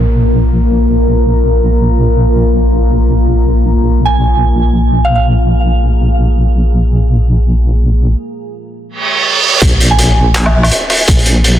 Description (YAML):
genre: half-time drum and bass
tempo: free time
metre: none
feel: none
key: unclear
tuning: A4 = 439 Hz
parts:
  - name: deep dark ambient pad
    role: sustained chords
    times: 0.0-11.6 s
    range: Bb3 to Bb5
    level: -17 LUFS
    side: left 2 dB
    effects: chorus, built-in reverb, sidechain pumping
  - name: deep soft wobble bass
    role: bass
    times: 0.0-11.6 s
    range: Bb1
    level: -10 LUFS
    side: equal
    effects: chorus, tube saturation
  - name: downlifter, reverse cymbal and sub drop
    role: sound effects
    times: 0.0-0.8, 9.0-11.1 s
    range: none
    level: -14 LUFS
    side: right 4 dB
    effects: none
  - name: soft synth bell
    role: melody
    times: 4.1-5.2, 9.9-10.3 s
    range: F5 to Ab5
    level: -18 LUFS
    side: right 3 dB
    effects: chorus, digital delay
  - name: crunchy breakbeat drum kit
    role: drums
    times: 9.6-11.5 s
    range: handclaps, hi-hat, woodblock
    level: -12 LUFS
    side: equal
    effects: low-pass filter on hats, low-pass filter on snare, low-pass filter on perc, low-pass filter on room
  - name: electronic kick drum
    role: drums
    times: 9.6-11.2 s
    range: none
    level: -10 LUFS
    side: equal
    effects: none
room: light reverb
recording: dense, heavily limited modern master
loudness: -9 LUFS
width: side -11 dB against mid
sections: 0.0-9.6 A section; 9.6-11.6 B section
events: break 8.2-9.6; reverse cymbal 9.0-9.6; drop 9.6-11.6; impact 9.6-11.1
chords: 0.0 Bb5